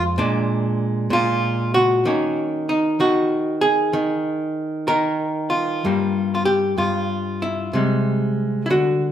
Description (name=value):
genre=solo jazz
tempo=63 BPM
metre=4/4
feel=swing 66% on 8ths, rubato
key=unclear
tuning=A4 = 440 Hz
part: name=archtop guitar, miked and amplified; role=solo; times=0.0-9.1 s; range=F2 to Bb4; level=-18 LUFS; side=equal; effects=none
room=wet large studio reverb, RT60 1.4 s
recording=band playing live in one room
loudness=-18 LUFS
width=side -10 dB against mid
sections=0.0-9.1 A section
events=none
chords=0.2 Bb7; 2.1 Ebm7; 5.8 Gm7; 7.7 C